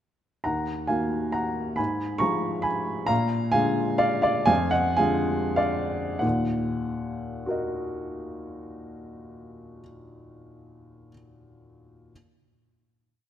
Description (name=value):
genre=classical, piano waltz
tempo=90-141 BPM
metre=3/4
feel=rubato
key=Eb minor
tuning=A4 = 439 Hz
part: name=warm upright piano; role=solo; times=0.4-12.1 s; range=Eb2 to Db6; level=-24 LUFS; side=equal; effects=none
room=moderate concert hall reverb, RT60 1.9 s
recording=none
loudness=-23 LUFS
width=side -10 dB against mid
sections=0.5-6.2 A section; 6.2-9.9 final chord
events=slowing down 2.4-6.2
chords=0.5 Ebm; 1.8 Fdim/Ab; 3.1 Bb7; 6.2 Ebm